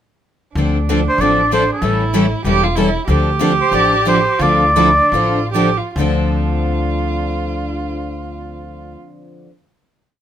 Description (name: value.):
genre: acoustic string swing (jazz manouche).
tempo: 134-191 BPM.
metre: 4/4.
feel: swing 59% on 8ths.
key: D minor.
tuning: A4 = 438 Hz.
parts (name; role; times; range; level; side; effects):
warm violin; second line; 0.5-8.9 s; D4 to G4; -21 LUFS; right 5 dB; none.
picked steel-string acoustic guitar; accompaniment; 0.6-9.5 s; D3 to A4; -20 LUFS; left 4 dB; none.
picked steel-string acoustic guitar; accompaniment; 0.6-9.5 s; D3 to A4; -24 LUFS; right 6 dB; none.
upright bass; bass; 0.6-8.9 s; E1 to D2; -20 LUFS; left 1 dB; none.
warm oboe; melody; 1.1-5.5 s; A4 to D5; -14 LUFS; equal; none.
room: moderate studio reverb, RT60 0.5 s.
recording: minimal, uncompressed stereo recording.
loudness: -13 LUFS.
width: side -10 dB against mid.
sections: 0.6-6.0 A section; 6.0-9.6 final chord.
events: slowing down 3.1-6.0.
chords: 0.6 Dm7; 1.8 A7; 3.1 Dm7.